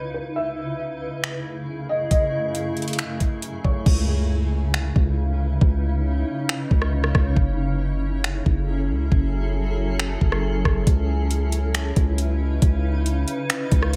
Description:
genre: hip hop, atmospheric cloud-rap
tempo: 137 BPM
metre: 4/4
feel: half-time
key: C# minor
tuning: A4 = 441 Hz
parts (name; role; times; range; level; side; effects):
- felt-muted upright piano; melody; 0.0-3.9 s; B4 to E5; -31 LUFS; equal; lush chorus, low-pass filter, tape echo
- granular cloud pad; sustained chords; 0.0-14.0 s; C#2 to C#5; -30 LUFS; equal; built-in reverb, subtle chorus, sidechain pumping, low-pass filter
- smooth R&B drum kit; drums; 1.2-14.0 s; crash cymbal, finger snaps, hi-hat, kick drum, rim click; -24 LUFS; equal; none
- warm 808-style bass; bass; 3.9-14.0 s; F#1 to C#2; -24 LUFS; equal; none
room: light reverb, digital ambience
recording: none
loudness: -23 LUFS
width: mono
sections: 0.0-3.9 A section; 3.9-14.0 B section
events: hi-hats muted 3.9-10.9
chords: 0.4 F#m9; 3.9 C#m9; 7.4 F#m9; 10.9 C#m9

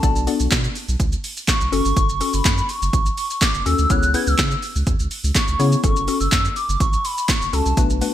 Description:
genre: dance-pop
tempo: 124 BPM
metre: 4/4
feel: straight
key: F# minor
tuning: A4 = 440 Hz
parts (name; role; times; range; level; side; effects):
- hollow clarinet-like synth lead; melody; 0.0-8.1 s; A5 to G#6; -23 LUFS; left 1 dB; chorus, ping-pong delay
- hollow square pluck; accompaniment; 0.0-8.1 s; A3 to D5; -24 LUFS; left 6 dB; chorus, sidechain pumping
- warm sub bass; bass; 0.0-8.0 s; F#1 to C#3; -22 LUFS; right 1 dB; sidechain pumping
- punchy analog drum machine; drums; 0.0-8.1 s; handclaps, hi-hat, kick drum, shaker, snare drum; -20 LUFS; right 1 dB; gated reverb
- group handclap; percussion; 6.3-7.4 s; none; barely audible; none; none
room: light reverb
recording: bright 1980s-style digital production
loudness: -17 LUFS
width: side -12 dB against mid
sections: 0.0-8.1 A section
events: none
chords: 0.0 Bm7; 1.7 F#m; 3.9 C#m7; 5.8 F#m

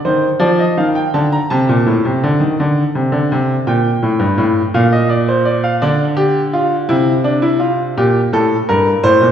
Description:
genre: classical, baroque-style two-part invention for grand piano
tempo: 56 BPM (dotted quarters)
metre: 12/8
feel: straight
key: unclear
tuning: A4 = 440 Hz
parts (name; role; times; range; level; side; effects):
- clear concert grand piano; solo; 0.0-9.3 s; G2 to Bb5; -12 LUFS; equal; none
room: wet recital hall reverb, RT60 1.6 s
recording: heard from further back in the room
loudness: -12 LUFS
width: side -9 dB against mid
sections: 0.0-9.3 A section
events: none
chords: 0.0 Adim (rootless); 1.5 D5; 3.7 Gm; 5.8 Dm; 8.0 Edim (rootless)

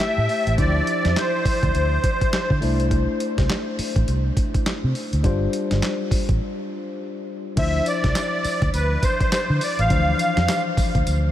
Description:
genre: R&B, new jack swing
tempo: 103 BPM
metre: 4/4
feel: swing 61% on 16ths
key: D minor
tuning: A4 = 440 Hz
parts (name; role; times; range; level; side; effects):
- musette accordion; melody; 0.0-2.6, 7.6-10.6 s; B4 to F5; -24 LUFS; equal; diffuse ambient delay
- tine electric piano; accompaniment; 0.0-11.3 s; E3 to C5; -26 LUFS; left 3 dB; none
- dusty soul sampler-style drum kit; drums; 0.0-11.2 s; crash cymbal, handclaps, hi-hat, kick drum, snare drum, tambourine; -24 LUFS; equal; none
- vintage muted fingered electric bass; bass; 0.2-11.3 s; G1 to D3; -21 LUFS; equal; none
room: moderate huge ambient reverb, RT60 8.5 s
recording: dreamy mix soaked in reverb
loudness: -19 LUFS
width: side -12 dB against mid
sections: 0.0-7.6 A section; 7.6-11.3 B section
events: break 6.4-7.6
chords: 0.0 Am7; 0.6 Dm9; 2.6 C69; 5.2 G7sus4; 7.6 Dm9

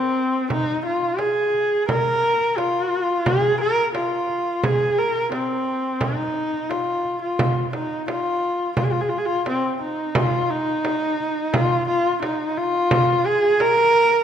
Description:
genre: mongolian traditional, Mongolian folk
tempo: 87 BPM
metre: 4/4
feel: straight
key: F yu mode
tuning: A4 = 440 Hz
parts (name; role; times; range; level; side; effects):
- rich horsehead fiddle; melody; 0.0-14.2 s; C4 to Bb4; -20 LUFS; equal; none
- frame drum; percussion; 0.5-14.0 s; none; -25 LUFS; right 2 dB; none
room: moderate concert hall reverb, RT60 1.8 s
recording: minimal, uncompressed stereo recording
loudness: -19 LUFS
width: side -9 dB against mid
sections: 0.0-8.8 A section; 8.8-14.2 B section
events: none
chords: none

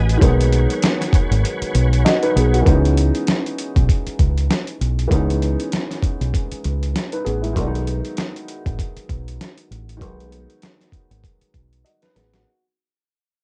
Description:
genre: hip hop, boom-bap hip-hop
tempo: 98 BPM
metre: 4/4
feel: swing 57% on 16ths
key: C# minor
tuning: A4 = 440 Hz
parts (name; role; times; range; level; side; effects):
- dark upright piano; accompaniment; 0.0-12.6 s; D#3 to D#5; -25 LUFS; equal; cassette tape, high-pass filter, low-pass filter
- tonewheel organ; sustained chords; 0.0-2.6 s; F#4 to G#5; -31 LUFS; equal; chorus vibrato, fast rotary speaker, high-pass filter, low-pass filter, cassette tape
- deep dub fingered electric bass; bass; 0.0-12.4 s; G#1 to C#2; -21 LUFS; equal; none
- dusty soul sampler-style drum kit; drums; 0.1-12.5 s; hi-hat, kick drum, snare drum; -22 LUFS; equal; overdrive, cassette tape
room: little or no reverb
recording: home recording on cassette, nothing above 10.8 kHz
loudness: -19 LUFS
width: mono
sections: 0.0-2.7 A section; 2.7-12.5 B section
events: kick muted 1.4-2.7; fade-out 2.7-12.5; drum fill 11.8-12.5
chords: 0.0 G#m7; 2.7 C#m7; 7.6 G#m7

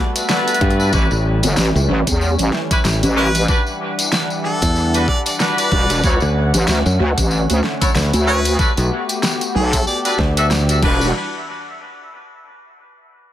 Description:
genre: glitch hop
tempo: 94 BPM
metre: 4/4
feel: swing 57% on 16ths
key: E dorian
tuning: A4 = 438 Hz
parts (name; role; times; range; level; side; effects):
- warm analog pad; sustained chords; 0.0-11.1 s; D3 to F#5; -24 LUFS; left 1 dB; chorus, vintage 12-bit sampler grit, sidechain pumping
- pop drum kit; drums; 0.2-11.0 s; crash cymbal, hi-hat, rim click, snare drum; -24 LUFS; equal; overdrive, dub echo
- tambourine; percussion; 0.2-11.1 s; none; -25 LUFS; left 2 dB; none
- brilliant horn section; stabs; 0.3-11.1 s; C#4 to E5; -23 LUFS; left 1 dB; sidechain pumping, dub echo
- fingered electric bass; bass; 0.6-10.8 s; A1 to G2; -16 LUFS; equal; none
- electronic kick drum; drums; 0.6-11.0 s; none; -19 LUFS; equal; overdrive
- wobble bass; bass; 0.9-11.1 s; E1 to E2; -17 LUFS; equal; chorus, overdrive
- clear harmonica; melody; 3.2-10.1 s; A4 to D5; -26 LUFS; equal; dub echo
room: light reverb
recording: echo-heavy mix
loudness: -14 LUFS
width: side -12 dB against mid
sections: 0.0-11.1 A section; 11.1-13.3 B section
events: drop 0.0-11.1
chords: 0.0 Gmaj9; 0.9 A7; 3.5 Em9; 6.0 Dmaj7; 8.6 Gmaj9; 10.8 Em9; 11.1 N.C.

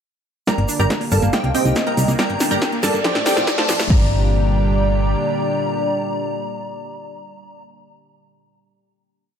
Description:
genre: uplifting trance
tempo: 140 BPM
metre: 4/4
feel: straight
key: G minor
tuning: A4 = 440 Hz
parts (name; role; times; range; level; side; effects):
- wide unison pluck; melody; 0.5-7.7 s; G4 to Bb5; -24 LUFS; right 1 dB; wide subtle chorus, sidechain pumping, ping-pong delay
- plucky unison lead; second line; 0.5-7.7 s; G5 to Bb5; -30 LUFS; equal; sidechain pumping, ping-pong delay
- warm velvety synth lead; second line; 0.5-7.7 s; D5 to G5; -25 LUFS; left 1 dB; chorus, ping-pong delay
- lush unison pad; sustained chords; 0.5-7.7 s; A2 to G4; -25 LUFS; right 1 dB; chorus, sidechain pumping
- analog pluck; arpeggios; 0.5-4.1 s; F3 to G4; -26 LUFS; right 2 dB; chorus, sidechain pumping, ping-pong delay
- big-room dance drum kit; drums; 0.5-4.0 s; crash cymbal, hi-hat, snare drum; -23 LUFS; equal; overdrive
- electronic kick drum; drums; 0.5-4.0 s; none; -21 LUFS; equal; overdrive, high-pass filter on kick, high-pass filter on room
- egg shaker; percussion; 0.5-3.9 s; none; -32 LUFS; right 3 dB; none
- riser; sound effects; 2.0-3.9 s; none; -30 LUFS; right 1 dB; none
- solid FM bass; bass; 0.6-5.1 s; G1 to C2; -19 LUFS; equal; sidechain pumping
room: moderate lush hall reverb, RT60 2.4 s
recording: dark, warm production, high-pass filter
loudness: -16 LUFS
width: side -8 dB against mid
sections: 0.5-3.9 build; 3.9-7.3 final chord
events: build-up 0.5-3.9; drum fill 0.5-3.9; filter sweep 0.5-3.9; riser 2.0-3.9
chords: 0.5 Gm; 1.3 Cm7; 2.2 Gm; 3.0 F/A; 3.9 Gm

